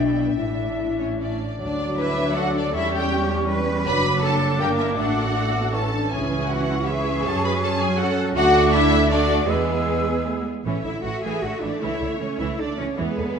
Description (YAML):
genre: classical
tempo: 158 BPM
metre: 3/4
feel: straight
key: D major, A major from 6.1 s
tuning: A4 = 440 Hz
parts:
  - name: clear symphonic violin section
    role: melody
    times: 0.0-13.4 s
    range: G#4 to B5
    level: -27 LUFS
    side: left 2 dB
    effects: none
  - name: bright concert flute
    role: second line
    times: 0.0-10.5 s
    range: D5 to E6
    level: -30 LUFS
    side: left 2 dB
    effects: none
  - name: rich symphonic violin section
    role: second line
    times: 0.0-13.4 s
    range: B3 to G#5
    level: -28 LUFS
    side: left 2 dB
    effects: none
  - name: rich symphonic viola section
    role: accompaniment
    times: 0.0-13.4 s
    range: D3 to D4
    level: -28 LUFS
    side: right 2 dB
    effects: none
  - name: mellow French horn section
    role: sustained chords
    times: 0.0-10.6 s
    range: E3 to E4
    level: -28 LUFS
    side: left 4 dB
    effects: none
  - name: rich studio cello section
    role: bass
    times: 0.0-13.4 s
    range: A2 to B4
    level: -28 LUFS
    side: right 3 dB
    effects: none
  - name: rich studio double bass section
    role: bass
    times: 0.0-13.4 s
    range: F#1 to F#2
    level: -27 LUFS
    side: right 4 dB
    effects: none
  - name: warm bassoon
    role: accompaniment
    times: 1.6-10.5 s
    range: E3 to Bb3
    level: -30 LUFS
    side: right 3 dB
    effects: none
room: wet scoring stage reverb, RT60 1.5 s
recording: dark, warm production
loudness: -20 LUFS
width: side -6 dB against mid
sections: 0.0-1.6 A section; 1.6-10.7 B section; 10.7-13.4 C section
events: none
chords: 0.4 Asus4; 1.2 A; 1.6 D; 2.7 C#dim/E; 3.9 D/F#; 4.6 Gm; 5.0 D/A; 5.7 A; 6.1 C#m; 7.2 F#m; 8.4 D; 9.5 E; 10.7 A; 11.8 A/C#